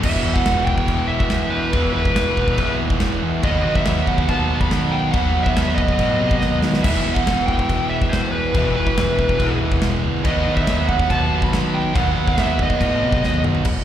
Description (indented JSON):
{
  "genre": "heavy metal",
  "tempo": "141 BPM",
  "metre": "4/4",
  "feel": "straight",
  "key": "unclear",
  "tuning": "A4 = 436 Hz",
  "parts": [
    { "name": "distorted electric guitar", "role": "riff", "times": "0.0-13.7 s", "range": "E2 to B3", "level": "-27 LUFS", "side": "equal", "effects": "overdrive, slapback echo" },
    { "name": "heavy high-gain guitar", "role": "riff", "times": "0.0-13.7 s", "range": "E2 to B3", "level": "-26 LUFS", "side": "right 10 dB", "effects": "distortion, slapback echo" },
    { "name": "sludgy distorted guitar", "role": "riff", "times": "0.0-13.7 s", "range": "E2 to B3", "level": "-27 LUFS", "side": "left 9 dB", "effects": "overdrive, slapback echo" },
    { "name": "fuzz picked electric bass", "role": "bass", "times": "0.0-13.8 s", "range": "E1 to D#3", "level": "-23 LUFS", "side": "equal", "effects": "overdrive" },
    { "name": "big rock drum kit", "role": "drums", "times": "0.0-13.8 s", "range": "china cymbal, crash cymbal, kick drum, snare drum, splash cymbal, toms", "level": "-22 LUFS", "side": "equal", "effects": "none" },
    { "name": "high-gain lead guitar", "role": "melody", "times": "0.1-13.4 s", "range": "B4 to B5", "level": "-23 LUFS", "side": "right 1 dB", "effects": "distortion, slapback echo, ping-pong delay" }
  ],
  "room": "studio ambience",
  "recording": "live gig heard through the venue's PA, recital hall reverb",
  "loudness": "-16 LUFS",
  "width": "side -10 dB against mid",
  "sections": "0.0-13.7 A section",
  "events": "drum fill 6.4-6.8, 13.2-13.7",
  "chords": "0.0 E5; 3.4 B/D#; 6.8 E5; 10.2 B/D#"
}